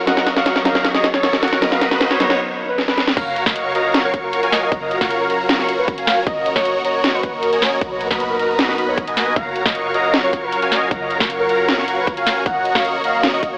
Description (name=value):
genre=future bass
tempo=155 BPM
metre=4/4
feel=half-time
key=F# major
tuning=A4 = 439 Hz
part: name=felt-muted upright piano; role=accompaniment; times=0.0-3.2 s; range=F#3 to A#4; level=-30 LUFS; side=equal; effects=sidechain pumping, tape echo
part: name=airy breathy pad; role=sustained chords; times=0.0-13.6 s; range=D#2 to C#5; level=-34 LUFS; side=equal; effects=chorus, sidechain pumping
part: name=dense compressed supersaw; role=riff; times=0.0-13.6 s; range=F#4 to C#6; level=-22 LUFS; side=equal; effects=sidechain pumping
part: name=riser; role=sound effects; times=0.0-2.4 s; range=none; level=-29 LUFS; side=equal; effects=none
part: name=warm velvety synth lead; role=melody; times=0.1-13.6 s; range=A#4 to F#5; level=-24 LUFS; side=equal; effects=chorus, sidechain pumping, digital delay
part: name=trap drum kit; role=drums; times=0.1-13.5 s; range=crash cymbal, hi-hat, snare drum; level=-22 LUFS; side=equal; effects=none
part: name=warm 808-style bass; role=bass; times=3.2-13.6 s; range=D#1 to B1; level=-45 LUFS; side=equal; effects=sidechain pumping
part: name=electronic kick drum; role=drums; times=3.2-13.5 s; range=none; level=-27 LUFS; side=equal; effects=overdrive
room=moderate huge ambient reverb, RT60 7.1 s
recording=AM radio sound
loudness=-18 LUFS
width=mono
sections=0.0-3.2 A section; 3.2-13.6 B section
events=build-up 0.0-3.2; drum fill 0.0-2.4, 2.8-3.2; riser 0.0-2.4; break 2.4-3.2; drop 3.2-13.6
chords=0.1 D#m7; 1.6 Bmaj7; 3.2 F#maj7; 6.3 D#m7; 7.8 Bmaj7; 9.4 F#maj7; 12.5 D#m7